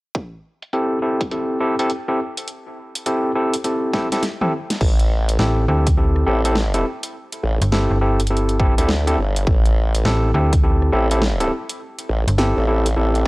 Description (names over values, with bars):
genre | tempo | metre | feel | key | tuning
glitch hop | 103 BPM | 4/4 | swing 64% on 16ths | A minor pentatonic | A4 = 440 Hz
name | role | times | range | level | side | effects
dubstep drum kit | drums | 0.1-13.2 s | crash cymbal, hi-hat, rim click, snare drum, toms | -25 LUFS | equal | low-pass filter on hats, studio reverb, low-pass filter on snare, low-pass filter on toms, low-pass filter on cymbals
electronic kick drum | drums | 0.1-13.3 s | none | -18 LUFS | equal | high-pass filter on kick, studio reverb
overdriven tine electric piano | stabs | 0.7-13.2 s | C4 to A4 | -21 LUFS | equal | sidechain pumping, low-pass filter, analog delay
formant-sweep wobble bass | bass | 4.8-13.2 s | G1 to D2 | -19 LUFS | equal | chorus, overdrive
slap-like FM bass | bass | 5.4-12.5 s | G1 to D2 | -18 LUFS | equal | none
room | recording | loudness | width
little or no reverb | dry, gritty hardware recording, cassette tape | -16 LUFS | side -22 dB against mid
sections
0.1-4.8 A section; 4.8-13.3 B section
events
filter sweep on drum 0.1-4.8; filter sweep on tine electric piano 0.1-4.8; drum fill 3.9-4.8; kick drops out 4.2-4.8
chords
0.1 Am7